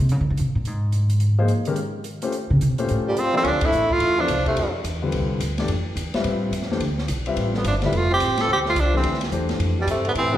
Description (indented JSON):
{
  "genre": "modal jazz",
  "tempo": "215 BPM",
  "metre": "4/4",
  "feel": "swing 61% on 8ths",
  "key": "Bb dorian, D dorian from 3.5 s",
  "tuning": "A4 = 440 Hz",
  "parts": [
    { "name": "upright bass", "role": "bass", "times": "0.0-10.4 s", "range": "F1 to Eb3", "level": "-23 LUFS", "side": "equal", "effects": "none" },
    { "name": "open jazz drum kit", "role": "drums", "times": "0.1-10.2 s", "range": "hi-hat, kick drum, ride cymbal, snare drum", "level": "-31 LUFS", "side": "equal", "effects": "none" },
    { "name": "warm grand piano", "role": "accompaniment", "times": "1.4-10.4 s", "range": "D3 to E5", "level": "-26 LUFS", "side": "left 3 dB", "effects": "none" },
    { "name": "clear tenor saxophone", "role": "melody", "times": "3.1-4.7, 7.6-10.4 s", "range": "G3 to A4", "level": "-21 LUFS", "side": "right 1 dB", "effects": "none" },
    { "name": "bright trombone", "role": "second line", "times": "3.1-4.7, 7.5-10.4 s", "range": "Bb2 to C4", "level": "-27 LUFS", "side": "left 1 dB", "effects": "none" }
  ],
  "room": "wet recital hall reverb, RT60 1.6 s",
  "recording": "recorded in a church or concert hall",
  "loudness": "-19 LUFS",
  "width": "side -12 dB against mid",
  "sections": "0.0-3.5 A section; 3.5-10.4 B section",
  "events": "upright bass solo 0.0-3.5; band accent 3.6",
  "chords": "0.0 Bbm9; 2.3 A7alt; 3.5 Dm9"
}